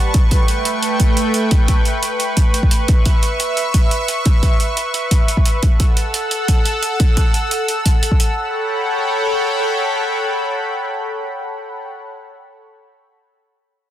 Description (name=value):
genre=liquid drum and bass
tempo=175 BPM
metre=4/4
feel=straight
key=G lydian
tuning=A4 = 440 Hz
part: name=lush unison pad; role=sustained chords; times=0.0-11.9 s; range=G3 to E6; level=-19 LUFS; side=equal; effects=chorus, sidechain pumping
part: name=electronic hi-hat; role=drums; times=0.1-8.3 s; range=none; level=-23 LUFS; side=right 2 dB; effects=studio reverb
part: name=electronic kick drum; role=drums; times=0.1-8.2 s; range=none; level=-14 LUFS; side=equal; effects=studio reverb
room=light reverb, small room reverb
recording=dense, heavily limited modern master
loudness=-14 LUFS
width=side -12 dB against mid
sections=0.0-8.4 A section; 8.4-11.1 B section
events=none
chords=0.1 A9; 2.7 C#m7; 5.6 F#m7; 8.4 Gmaj9#11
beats=| 0.14 0.48 0.83 1.17 | 1.51 1.85 2.20 2.54 | 2.88 3.23 3.57 3.91 | 4.25 4.60 4.94 5.28 | 5.63 5.97 6.31 6.65 | 7.00 7.34 7.68 8.03 | 8.37 8.71 9.05 9.40 | 9.74 10.08 10.43 10.77